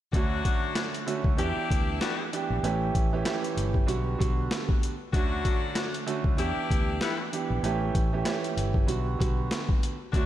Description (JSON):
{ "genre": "hip hop, boom-bap hip-hop", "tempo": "96 BPM", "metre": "4/4", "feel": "swing 59% on 16ths", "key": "D major", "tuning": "A4 = 440 Hz", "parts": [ { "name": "warm grand piano", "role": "accompaniment", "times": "0.1-10.3 s", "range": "D3 to G4", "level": "-31 LUFS", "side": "right 5 dB", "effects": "cassette tape, high-pass filter, low-pass filter" }, { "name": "edgy saxophone section", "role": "stabs", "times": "0.1-10.3 s", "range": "F#3 to G4", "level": "-33 LUFS", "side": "left 7 dB", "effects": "high-pass filter, low-pass filter, diffuse ambient delay" }, { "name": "fingered electric bass", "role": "bass", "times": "0.1-10.3 s", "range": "G1 to E2", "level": "-30 LUFS", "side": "equal", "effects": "none" }, { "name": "boom bap sampler-style drum kit", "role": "drums", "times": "0.1-10.3 s", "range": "hi-hat, kick drum, snare drum", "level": "-28 LUFS", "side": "equal", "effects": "overdrive" } ], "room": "light reverb", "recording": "none", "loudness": "-25 LUFS", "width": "side -12 dB against mid", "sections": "0.1-10.3 A section", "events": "none", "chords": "0.1 Dmaj7; 1.4 Em7; 2.6 A7; 3.9 Gmaj7/B; 5.1 Dmaj7; 6.4 Em7; 7.6 A7; 8.9 Gmaj7/B" }